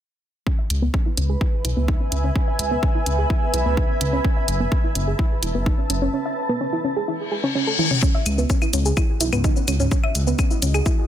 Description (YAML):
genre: melodic techno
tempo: 127 BPM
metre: 4/4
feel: straight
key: C# minor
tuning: A4 = 440 Hz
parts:
  - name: soft round pluck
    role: arpeggios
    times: 0.5-11.0 s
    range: B3 to E5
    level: -26 LUFS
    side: right 1 dB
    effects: chorus, sidechain pumping, dub echo
  - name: electronic kick drum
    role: drums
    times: 0.5-11.0 s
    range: none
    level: -20 LUFS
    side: equal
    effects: overdrive
  - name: granular cloud pad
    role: texture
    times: 1.3-11.1 s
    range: F#4 to A5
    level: -27 LUFS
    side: right 1 dB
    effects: built-in reverb, sidechain pumping
  - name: dark detuned saw bass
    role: bass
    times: 0.7-10.8 s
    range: E1 to C#2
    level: -22 LUFS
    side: equal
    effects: sidechain pumping
  - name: house drum kit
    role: drums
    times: 0.7-11.0 s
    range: claves, hi-hat, shaker, toms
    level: -26 LUFS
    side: left 1 dB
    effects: overdrive
  - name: reverse cymbal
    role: sound effects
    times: 7.2-8.0 s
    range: none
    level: -24 LUFS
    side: left 7 dB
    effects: none
room: light reverb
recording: dense, heavily limited modern master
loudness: -19 LUFS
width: side -10 dB against mid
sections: 0.5-8.0 A section; 8.0-11.1 B section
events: filter sweep on detuned saw bass 0.5-8.0; filter sweep on synth arpeggio sound 0.5-8.0; reverse cymbal 7.2-8.0; drum fill 7.8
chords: 0.5 C#m7; 4.2 F#m; 8.0 C#m7